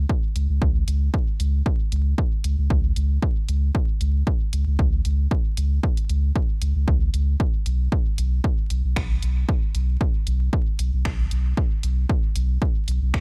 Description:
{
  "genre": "dub techno",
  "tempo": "115 BPM",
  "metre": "4/4",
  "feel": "swing 53% on 16ths",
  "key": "unclear",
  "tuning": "A4 = 445 Hz",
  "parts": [
    { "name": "warm sub bass", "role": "bass", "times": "0.0-13.2 s", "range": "B1 to C#2", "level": "-23 LUFS", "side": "equal", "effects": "tube saturation, sidechain pumping" },
    { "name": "electronic kick drum", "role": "drums", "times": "0.1-13.2 s", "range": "none", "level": "-25 LUFS", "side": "equal", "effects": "none" },
    { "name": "punchy analog drum machine", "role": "drums", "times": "0.4-13.2 s", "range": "finger snaps, hi-hat", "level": "-36 LUFS", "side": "equal", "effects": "none" }
  ],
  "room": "little or no reverb",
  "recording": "vinyl crackle",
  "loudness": "-23 LUFS",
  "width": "mono",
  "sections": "0.0-13.2 A section",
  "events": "none",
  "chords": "none"
}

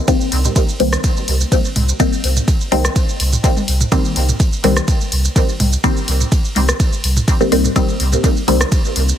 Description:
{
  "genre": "dub techno",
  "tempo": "125 BPM",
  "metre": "4/4",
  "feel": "swing 53% on 16ths",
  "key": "C minor",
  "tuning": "A4 = 439 Hz",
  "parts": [
    { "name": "filtered dub chord stab", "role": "stabs", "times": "0.1-8.6 s", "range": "Eb3 to C4", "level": "-19 LUFS", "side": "left 2 dB", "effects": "phaser, sidechain pumping, dub echo" },
    { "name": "deep house drum kit", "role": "drums", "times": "0.1-9.2 s", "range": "hi-hat, ride cymbal, rim click, shaker", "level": "-22 LUFS", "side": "right 1 dB", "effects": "none" },
    { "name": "electronic kick drum", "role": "drums", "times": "0.1-8.8 s", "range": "none", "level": "-15 LUFS", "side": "equal", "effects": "none" },
    { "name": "soft dub sub bass", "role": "bass", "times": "0.3-9.1 s", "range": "C2", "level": "-16 LUFS", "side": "equal", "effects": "sidechain pumping" },
    { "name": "electronic toms", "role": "percussion", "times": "0.4-8.6 s", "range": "none", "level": "-24 LUFS", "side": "right 1 dB", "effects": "overdrive, sidechain pumping on toms" }
  ],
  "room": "light reverb, digital ambience",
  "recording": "heavily compressed radio sound",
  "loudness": "-13 LUFS",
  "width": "side -10 dB against mid",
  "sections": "0.0-9.2 A section",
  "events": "none",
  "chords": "0.0 Cm7"
}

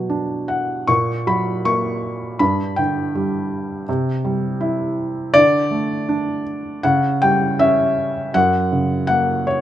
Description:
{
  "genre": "classical, lyrical solo piano",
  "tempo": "80 BPM",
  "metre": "4/4",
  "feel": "rubato",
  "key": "unclear",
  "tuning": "A4 = 440 Hz",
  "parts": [
    { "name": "felt-muted upright piano", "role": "solo", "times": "0.0-9.6 s", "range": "F#2 to C#6", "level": "-17 LUFS", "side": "equal", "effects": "none" }
  ],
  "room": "light reverb",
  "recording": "close, detailed microphones",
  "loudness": "-17 LUFS",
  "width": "side -12 dB against mid",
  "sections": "0.0-9.6 A section",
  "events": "none",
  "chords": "0.0 Bm; 0.9 F#/A#; 2.4 G5; 3.9 C; 5.3 D5; 6.8 C#dim; 8.3 F#"
}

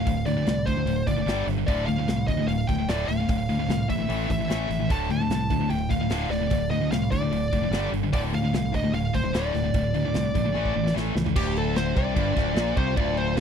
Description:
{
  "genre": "heavy metal",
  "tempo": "149 BPM",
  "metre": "4/4",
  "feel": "straight",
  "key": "D minor",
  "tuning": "A4 = 439 Hz",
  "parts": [
    { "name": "high-gain lead guitar", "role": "melody", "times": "0.0-13.4 s", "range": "G4 to A5", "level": "-30 LUFS", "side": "equal", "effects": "distortion" },
    { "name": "distorted electric guitar", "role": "riff", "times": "0.0-13.4 s", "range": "D2 to A3", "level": "-29 LUFS", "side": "left 15 dB", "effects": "overdrive" },
    { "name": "scooped high-gain guitar", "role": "riff", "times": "0.0-13.4 s", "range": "D2 to A3", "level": "-30 LUFS", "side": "right 11 dB", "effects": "distortion" },
    { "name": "growling fingered electric bass", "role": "bass", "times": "0.0-13.4 s", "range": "D1 to D2", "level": "-28 LUFS", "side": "equal", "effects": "overdrive" },
    { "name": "modern studio drum kit", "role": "drums", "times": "0.1-13.4 s", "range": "crash cymbal, hi-hat, kick drum, snare drum, toms", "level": "-29 LUFS", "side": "equal", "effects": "none" },
    { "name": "dark studio string section", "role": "sustained chords", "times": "11.4-13.4 s", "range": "D3 to F4", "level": "-39 LUFS", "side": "left 2 dB", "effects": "none" }
  ],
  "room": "little or no reverb",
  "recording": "dry, close 1970s-style studio recording",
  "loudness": "-22 LUFS",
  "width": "side -7 dB against mid",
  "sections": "0.0-11.4 A section; 11.4-13.4 B section",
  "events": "drum fill 10.5-11.4; lead electric guitar solo 11.4-13.4",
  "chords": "0.0 Dm; 1.3 G5; 1.7 Dm; 4.1 A5; 4.9 Dm; 7.7 G5; 8.1 Dm; 10.5 A5; 11.4 Dm"
}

